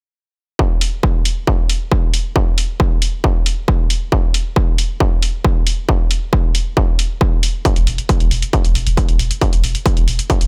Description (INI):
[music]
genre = driving peak-time techno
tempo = 136 BPM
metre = 4/4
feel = straight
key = unclear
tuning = A4 = 440 Hz
[part]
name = electronic kick drum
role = drums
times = 0.6-10.4 s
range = none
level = -17 LUFS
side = equal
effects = distortion
[part]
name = electronic hi-hat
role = drums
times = 0.8-10.5 s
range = none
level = -24 LUFS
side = equal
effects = sidechain pumping on hats
[part]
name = saturated sub bass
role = bass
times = 7.8-10.5 s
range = E1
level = -21 LUFS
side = equal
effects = overdrive, sidechain pumping, low-pass filter
[sound]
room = little or no reverb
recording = none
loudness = -17 LUFS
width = mono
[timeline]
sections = 0.6-10.5 A section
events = none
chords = none